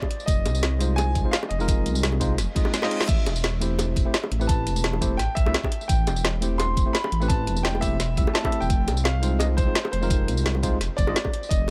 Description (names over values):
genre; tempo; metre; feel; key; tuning
liquid drum and bass; 171 BPM; 4/4; swing 53% on 16ths; A minor; A4 = 440 Hz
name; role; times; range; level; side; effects
clear concert grand piano; melody; 0.0-11.7 s; C5 to C6; -34 LUFS; equal; digital delay
electronic kick drum; drums; 0.0-11.6 s; none; -26 LUFS; equal; overdrive
bongos; percussion; 0.0-11.7 s; none; -33 LUFS; equal; none
drum and bass drum kit; drums; 0.1-11.6 s; crash cymbal, hi-hat, snare drum, tambourine; -30 LUFS; equal; none
dark detuned saw bass; bass; 0.3-11.7 s; E1 to D2; -27 LUFS; equal; none
tine electric piano; accompaniment; 0.8-11.2 s; Ab3 to E5; -32 LUFS; equal; digital delay
reverse cymbal; sound effects; 2.5-3.1 s; none; -41 LUFS; equal; none
room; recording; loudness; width
digital ambience; none; -23 LUFS; mono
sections
0.0-11.7 A section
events
reverse cymbal 2.5-3.1; kick drops out 2.7-3.1; drum fill 2.7-3.1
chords
0.0 Fm7; 3.1 Am7; 8.7 Fm7